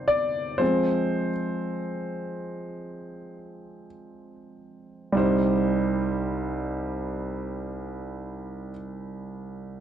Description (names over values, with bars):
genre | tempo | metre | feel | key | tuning
pop | free time | none | none | C minor | A4 = 441 Hz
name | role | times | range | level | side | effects
warm concert grand piano | accompaniment | 0.0-9.8 s | C2 to D5 | -26 LUFS | right 1 dB | none
room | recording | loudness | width
light reverb | dry, close 1970s-style studio recording | -25 LUFS | side -10 dB against mid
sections
0.0-5.1 A section; 5.1-9.8 B section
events
slowing down 0.0-5.1; grand piano solo 0.0-5.1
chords
0.0 Cm; 0.6 Fm; 5.1 Cm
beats
free time